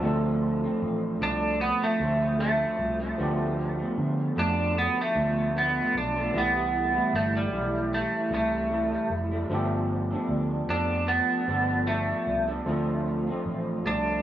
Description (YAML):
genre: indie pop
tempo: 76 BPM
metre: 4/4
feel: swing 55% on 16ths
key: D dorian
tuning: A4 = 443 Hz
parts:
  - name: barky tine electric piano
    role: accompaniment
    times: 0.0-14.2 s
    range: E3 to A4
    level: -32 LUFS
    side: right 3 dB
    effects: cassette tape
  - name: electric guitar through a small old amp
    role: accompaniment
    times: 0.0-14.2 s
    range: G2 to A4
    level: -31 LUFS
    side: left 1 dB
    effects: ensemble chorus, vibrato effect
  - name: vintage muted fingered electric bass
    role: bass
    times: 0.0-14.2 s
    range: F1 to D3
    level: -31 LUFS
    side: equal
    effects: none
  - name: electric guitar through a small old amp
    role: melody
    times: 1.2-14.2 s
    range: G3 to D4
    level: -27 LUFS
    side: right 1 dB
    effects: analog chorus, digital delay
room: moderate booth ambience, RT60 0.2 s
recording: small room ambience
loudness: -24 LUFS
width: side -12 dB against mid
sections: 0.0-14.2 A section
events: none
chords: 0.0 Dm7; 3.2 G9/D; 6.4 C6; 9.5 G9; 12.7 Dm7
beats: | 0.03 0.82 1.61 2.40 | 3.19 3.98 4.77 5.56 | 6.35 7.14 7.93 8.72 | 9.51 10.30 11.09 11.88 | 12.67 13.46